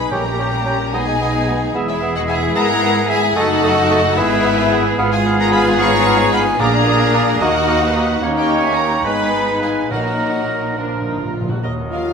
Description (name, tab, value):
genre	quick classical-period movement for symphony orchestra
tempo	74 BPM (dotted quarters)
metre	6/8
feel	straight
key	Eb minor from 5.0 s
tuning	A4 = 440 Hz
part	rich chamber violin section	melody	0.0-12.1 s	E5 to Db6	-23 LUFS	left 4 dB	none
part	clear chamber violin section	second line	0.0-12.1 s	E4 to F5	-24 LUFS	left 2 dB	none
part	concert flute	second line	0.0-12.1 s	B4 to Bb5	-24 LUFS	left 3 dB	none
part	rich studio viola section	accompaniment	0.0-12.0 s	G3 to Eb5	-24 LUFS	right 1 dB	none
part	mellow French horn section	sustained chords	0.0-12.1 s	Ab3 to F4	-23 LUFS	left 4 dB	none
part	dark trumpet section	stabs	0.0-11.3 s	G4 to Db5	-22 LUFS	right 2 dB	none
part	warm chamber cello section	bass	0.0-12.1 s	Eb2 to B2	-24 LUFS	right 1 dB	none
part	warm chamber double bass section	bass	0.0-12.1 s	E1 to Eb2	-27 LUFS	right 4 dB	none
part	clear oboe	second line	0.1-12.1 s	Bb4 to G5	-26 LUFS	right 2 dB	none
part	warm clarinet	second line	0.1-12.1 s	D4 to Bb4	-28 LUFS	left 1 dB	none
part	warm bassoon	accompaniment	0.1-12.1 s	F3 to Db4	-25 LUFS	right 2 dB	none
part	timpani	percussion	0.1-0.9, 6.6-7.4, 9.9-11.6 s	Bb2	-27 LUFS	equal	none
room	wet scoring stage reverb, RT60 1.7 s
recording	minimal, uncompressed stereo recording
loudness	-14 LUFS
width	side -6 dB against mid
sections	0.0-11.6 A section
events	timpani fill 10.8-11.6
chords	0.1 Gdim/Bb; 0.9 G#m/B; 1.8 E; 3.4 D#dim/F#; 4.2 E/G#; 5.0 Fdim/Ab; 6.6 Bb7; 7.4 Ebm; 8.2 Eb5; 9.1 Abm; 9.9 Ebm/Bb; 10.8 Bb